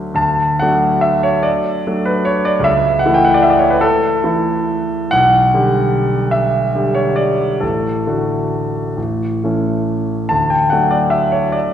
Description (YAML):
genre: classical, romantic nocturne for solo piano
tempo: 42-52 BPM (dotted quarters)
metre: 6/8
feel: rubato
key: D major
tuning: A4 = 445 Hz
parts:
  - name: clear concert grand piano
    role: solo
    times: 0.0-11.7 s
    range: A1 to A5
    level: -13 LUFS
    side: equal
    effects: none
room: wet concert hall reverb, RT60 2.2 s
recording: heard from further back in the room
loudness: -13 LUFS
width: side -9 dB against mid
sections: 0.2-11.7 A section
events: none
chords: 0.2 D; 2.7 A/C#; 5.1 G/B; 7.6 D/A; 9.0 A; 10.3 D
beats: | 0.16 1.45 | 2.67 3.83 | 5.13 6.33 | 7.62 8.97 | 10.31 11.54